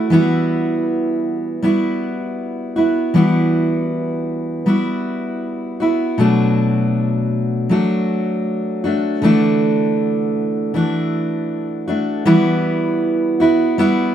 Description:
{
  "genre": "pop",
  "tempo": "79 BPM",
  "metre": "4/4",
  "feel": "straight",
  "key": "E minor",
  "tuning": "A4 = 440 Hz",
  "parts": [
    { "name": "fingerpicked steel-string acoustic guitar", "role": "solo", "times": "0.0-14.1 s", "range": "B2 to F#4", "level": "-15 LUFS", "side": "equal", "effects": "none" }
  ],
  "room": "moderate studio reverb, RT60 0.7 s",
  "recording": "band playing live in one room",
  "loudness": "-16 LUFS",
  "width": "side -10 dB against mid",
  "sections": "0.0-12.3 A section; 12.3-14.1 B section",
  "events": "none",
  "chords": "0.1 Emadd9; 6.2 Bm7; 9.2 Dadd9; 12.3 Emadd9"
}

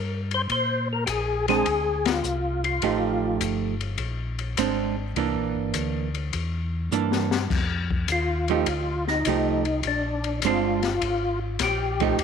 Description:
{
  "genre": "soul jazz organ trio",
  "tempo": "103 BPM",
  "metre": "4/4",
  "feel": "swing 69% on 8ths",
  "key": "unclear",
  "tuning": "A4 = 440 Hz",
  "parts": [
    { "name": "mellow tonewheel organ", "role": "bass", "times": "0.0-12.2 s", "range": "F1 to Bb2", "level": "-29 LUFS", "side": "left 1 dB", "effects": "slow rotary speaker" },
    { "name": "percussive tonewheel organ", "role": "melody", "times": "0.3-3.4, 8.1-12.2 s", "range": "D4 to C5", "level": "-26 LUFS", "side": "left 3 dB", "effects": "slow rotary speaker, chorus vibrato" },
    { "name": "open jazz drum kit", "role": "drums", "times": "0.3-12.2 s", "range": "crash cymbal, hi-hat, kick drum, ride cymbal, snare drum", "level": "-30 LUFS", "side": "left 7 dB", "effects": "none" },
    { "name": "archtop guitar, miked and amplified", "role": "accompaniment", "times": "1.5-12.2 s", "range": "E3 to G4", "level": "-26 LUFS", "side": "right 11 dB", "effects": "none" }
  ],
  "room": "moderate plate reverb, RT60 1.5 s, small room ambience",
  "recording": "1960s-style stereo with parts hard left and right",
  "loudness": "-23 LUFS",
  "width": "side -7 dB against mid",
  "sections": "0.0-7.5 A section; 7.5-12.2 B section",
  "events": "band accent 2.0; drum fill 6.9-7.5; tonewheel organ solo 7.5-12.2",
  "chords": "0.5 Bb9; 2.8 F9; 4.0 Bb9; 5.2 C9; 7.5 F9; 9.8 Bb9"
}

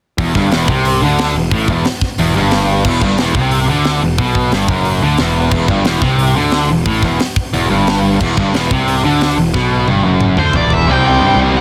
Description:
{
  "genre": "heavy metal",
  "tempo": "180 BPM",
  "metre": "4/4",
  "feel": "straight",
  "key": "E minor",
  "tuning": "A4 = 439 Hz",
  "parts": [
    { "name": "distorted electric guitar", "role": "riff", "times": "0.2-11.6 s", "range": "E2 to G3", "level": "-20 LUFS", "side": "equal", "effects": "distortion" },
    { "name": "distorted electric guitar", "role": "riff", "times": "0.2-11.6 s", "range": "E2 to C4", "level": "-18 LUFS", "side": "equal", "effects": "overdrive" },
    { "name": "fuzz picked electric bass", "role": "bass", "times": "0.2-11.6 s", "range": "E1 to G2", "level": "-20 LUFS", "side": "equal", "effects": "overdrive" },
    { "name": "tight metal drum kit", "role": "drums", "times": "0.2-10.8 s", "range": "crash cymbal, hi-hat, kick drum, snare drum, toms", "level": "-20 LUFS", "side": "equal", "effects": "none" },
    { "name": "high-gain lead guitar", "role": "melody", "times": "10.4-11.6 s", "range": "C5 to G5", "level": "-17 LUFS", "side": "equal", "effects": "distortion" }
  ],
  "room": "studio ambience",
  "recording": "dense, heavily limited modern master",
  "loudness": "-14 LUFS",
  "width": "mono",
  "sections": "0.2-10.9 A section",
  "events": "drum fill 9.5-10.9",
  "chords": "0.2 Em; 10.9 C5"
}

